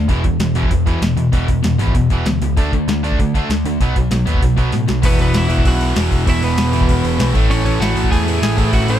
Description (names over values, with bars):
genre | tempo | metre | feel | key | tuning
punk rock | 194 BPM | 4/4 | straight | E major from 5.0 s | A4 = 440 Hz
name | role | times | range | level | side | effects
cranked stack guitar | riff | 0.0-9.0 s | E2 to D4 | -22 LUFS | right 9 dB | overdrive
overdriven electric guitar | riff | 0.0-9.0 s | E2 to D4 | -21 LUFS | left 9 dB | none
overdriven picked electric bass | bass | 0.0-9.0 s | E1 to D3 | -18 LUFS | equal | none
booming analog drum machine | drums | 0.1-9.0 s | crash cymbal, hi-hat, kick drum, snare drum | -18 LUFS | equal | overdrive
sludgy distorted guitar | riff | 5.0-9.0 s | E2 to A3 | -25 LUFS | right 1 dB | overdrive
lightly driven lead guitar | melody | 5.1-9.0 s | B3 to G#5 | -22 LUFS | equal | ping-pong delay
room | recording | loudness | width
little or no reverb | none | -13 LUFS | side -10 dB against mid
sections
0.0-5.0 A section; 5.0-9.0 B section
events
drum fill 4.7-5.0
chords
0.1 E5; 2.6 D5; 3.8 B5; 5.0 E5; 7.4 A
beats
| 0.09 0.40 0.71 1.02 | 1.33 1.64 1.95 2.26 | 2.57 2.88 3.19 3.50 | 3.81 4.11 4.42 4.73 | 5.04 5.35 5.66 5.97 | 6.27 6.58 6.89 7.20 | 7.51 7.81 8.12 8.43 | 8.74